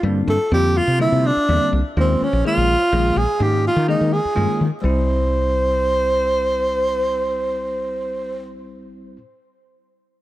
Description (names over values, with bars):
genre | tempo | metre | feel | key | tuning
jazz | 84 BPM (dotted quarters) | 6/8 | straight | C mixolydian | A4 = 438 Hz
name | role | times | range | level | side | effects
breathy tenor saxophone | melody | 0.0-8.5 s | C4 to C5 | -19 LUFS | right 1 dB | none
bell-like tine electric piano | accompaniment | 0.0-9.2 s | D3 to Ab4 | -25 LUFS | left 2 dB | fast stereo tremolo
woody fretless electric bass | bass | 0.0-9.2 s | Bb1 to Eb3 | -21 LUFS | equal | none
room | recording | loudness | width
light reverb | none | -16 LUFS | side -15 dB against mid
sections
0.0-4.8 A section; 4.8-7.7 B section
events
none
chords
0.0 C9sus4; 2.0 Eb9sus4; 4.8 C